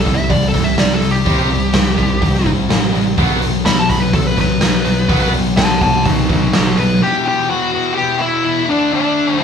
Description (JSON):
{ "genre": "quiet-loud alternative rock", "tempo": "125 BPM", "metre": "4/4", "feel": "straight", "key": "E minor", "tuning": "A4 = 440 Hz", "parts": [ { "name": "fuzz lead guitar", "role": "melody", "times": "0.0-9.4 s", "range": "D4 to B5", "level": "-18 LUFS", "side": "left 1 dB", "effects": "distortion" }, { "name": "distorted electric guitar", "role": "riff", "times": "0.0-7.0 s", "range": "B2 to C4", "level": "-20 LUFS", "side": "right 8 dB", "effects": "overdrive" }, { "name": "thick fuzz guitar", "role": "riff", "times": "0.0-9.4 s", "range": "E2 to D4", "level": "-19 LUFS", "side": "left 6 dB", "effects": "distortion" }, { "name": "growling picked electric bass", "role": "bass", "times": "0.0-7.0 s", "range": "A1 to C2", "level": "-22 LUFS", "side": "equal", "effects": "overdrive" }, { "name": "raw garage drum kit", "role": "drums", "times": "0.1-6.9 s", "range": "hi-hat, kick drum, snare drum", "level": "-16 LUFS", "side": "equal", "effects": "none" } ], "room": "moderate large studio reverb, RT60 0.8 s", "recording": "band playing live in one room", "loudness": "-12 LUFS", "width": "side -7 dB against mid", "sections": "0.0-7.0 A section; 7.0-9.4 B section", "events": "lead electric guitar solo 0.0-7.0", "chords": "0.0 C5; 3.2 B5; 7.0 Emadd9; 8.7 D5" }